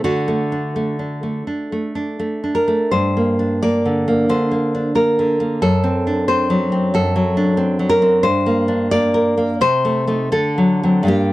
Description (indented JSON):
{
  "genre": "romantic piece for solo classical guitar",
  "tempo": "74-93 BPM",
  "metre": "4/4",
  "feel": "rubato",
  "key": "unclear",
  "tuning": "A4 = 440 Hz",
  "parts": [
    { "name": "nylon-string guitar", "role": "solo", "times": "0.0-11.3 s", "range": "F#2 to D5", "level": "-15 LUFS", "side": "equal", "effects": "none" }
  ],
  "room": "light reverb",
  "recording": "dry, close 1970s-style studio recording",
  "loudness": "-15 LUFS",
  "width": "side -17 dB against mid",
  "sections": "0.0-11.3 A section",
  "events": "none",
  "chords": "0.0 D; 2.9 Gm; 5.6 D7/F#; 8.3 Gm; 9.6 Adim/C; 10.3 D7",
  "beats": "| 0.03 0.73 1.45 2.18 | 2.91 3.62 4.30 4.98 | 5.63 6.30 6.95 7.60 | 8.26 8.92 9.60 10.31 | 11.07"
}